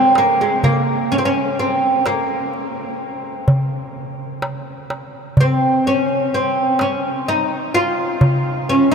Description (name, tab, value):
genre	Turkish makam ensemble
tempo	127 BPM (eighths)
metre	10/8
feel	straight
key	unclear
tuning	A4 = 440 Hz
part	oud	melody	0.0-8.9 s	Ab3 to F4	-17 LUFS	equal	none
part	darbuka	percussion	0.2-8.4 s	none	-20 LUFS	equal	none
room	wet huge ambient reverb, RT60 9.3 s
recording	in a vast, echoing space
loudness	-16 LUFS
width	side -6 dB against mid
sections	0.0-8.9 A section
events	none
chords	none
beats	0.16 | 0.64 1.11 1.59 2.06 2.54 3.01 3.48 3.96 4.43 4.90 | 5.38 5.85 6.32 6.79 7.27 7.74 8.21 8.68